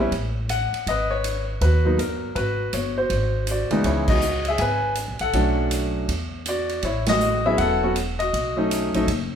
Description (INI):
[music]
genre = jazz piano trio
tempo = 161 BPM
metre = 4/4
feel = swing 63% on 8ths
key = G# minor, C# minor from 3.8 s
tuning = A4 = 439 Hz
[part]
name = clear grand piano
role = melody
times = 0.0-9.1 s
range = C#2 to G#5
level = -22 LUFS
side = left 1 dB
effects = none
[part]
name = upright bass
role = bass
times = 0.0-9.4 s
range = E1 to E2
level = -25 LUFS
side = equal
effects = none
[part]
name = swinging big-band drum kit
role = drums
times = 0.1-9.2 s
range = crash cymbal, hi-hat, kick drum, ride cymbal, snare drum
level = -29 LUFS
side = right 2 dB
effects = none
[sound]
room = moderate large studio reverb, RT60 1.1 s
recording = band playing live in one room, faint mains hum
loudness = -20 LUFS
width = side -8 dB against mid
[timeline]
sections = 0.0-3.8 A section; 3.8-9.4 B section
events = band accent 4.0, 7.0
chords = 0.1 F#m/A; 0.9 G#m9; 3.1 G#7; 3.8 C#m7; 5.3 Bm9; 6.1 Esus2; 6.8 A69; 8.3 B9